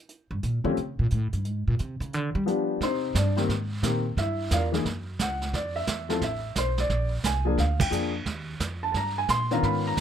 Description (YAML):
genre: jazz piano trio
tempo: 176 BPM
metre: 4/4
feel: swing 65% on 8ths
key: unclear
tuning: A4 = 440 Hz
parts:
  - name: vintage brush drum kit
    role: drums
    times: 0.1-10.0 s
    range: brushed snare drum, hi-hat, kick drum, ride cymbal, snare drum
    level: -32 LUFS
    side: right 4 dB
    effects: none
  - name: upright bass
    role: bass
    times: 0.3-10.0 s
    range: A1 to G3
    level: -28 LUFS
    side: right 1 dB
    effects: none
  - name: warm baby grand piano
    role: melody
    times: 0.6-10.0 s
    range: Eb3 to C6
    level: -27 LUFS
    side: left 2 dB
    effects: none
room: light reverb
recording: close, detailed microphones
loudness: -24 LUFS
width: side -9 dB against mid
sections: 0.0-2.8 A section; 2.8-10.0 B section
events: upright bass solo 0.0-2.8; band accent 7.8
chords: 0.1 C7sus2 (rootless); 0.8 Gdim; 1.4 Abadd9; 2.1 G7; 2.8 Cm7; 4.2 Gm7; 4.9 F#5; 5.5 Fmaj7; 6.9 Bb7; 8.3 Eb